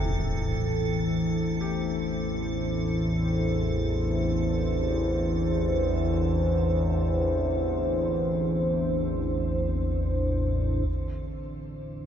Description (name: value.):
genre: dark ambient drone.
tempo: free time.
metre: none.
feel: none.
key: unclear.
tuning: A4 = 440 Hz.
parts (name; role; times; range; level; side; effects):
dark analog pad; sustained chords; 0.0-12.1 s; D4 to C5; -30 LUFS; equal; chorus, shimmer reverb.
bright concert grand piano; arpeggios; 0.0-10.9 s; C2 to G4; -44 LUFS; left 4 dB; ping-pong delay, shimmer reverb.
analog drone; drone; 0.0-12.1 s; A1 to E2; -26 LUFS; equal; chorus, phaser.
icy glass pad; texture; 0.0-10.9 s; A4; -38 LUFS; right 3 dB; chorus, built-in reverb, shimmer reverb.
room: moderate huge ambient reverb, RT60 8.5 s.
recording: cassette tape.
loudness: -24 LUFS.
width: side -9 dB against mid.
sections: 0.0-10.9 A section; 10.9-12.1 B section.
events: fade-in on analog synth pad 0.0-10.9; fade-in on grand piano 0.0-10.9; fade-out on ambient pad 0.0-10.9; filter sweep on synth drone 10.9-12.1.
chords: 0.0 C.